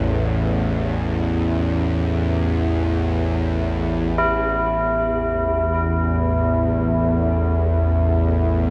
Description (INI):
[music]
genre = dark ambient drone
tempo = free time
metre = none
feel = none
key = unclear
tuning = A4 = 440 Hz
[part]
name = tubular bells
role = arpeggios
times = 0.0-8.7 s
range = E4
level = -25 LUFS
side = equal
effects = diffuse ambient delay
[part]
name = bowed-like drone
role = drone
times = 0.0-8.7 s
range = A1 to E2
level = -21 LUFS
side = equal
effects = built-in reverb
[part]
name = bronze singing bowl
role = texture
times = 0.0-4.2 s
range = none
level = barely audible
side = none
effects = none
[part]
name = sweeping resonant pad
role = sustained chords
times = 4.2-8.7 s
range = B3 to E5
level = -36 LUFS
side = equal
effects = none
[sound]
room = moderate huge ambient reverb, RT60 9.3 s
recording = none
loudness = -20 LUFS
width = mono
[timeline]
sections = 0.0-4.2 A section; 4.2-8.7 B section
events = none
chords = 0.0 Asus2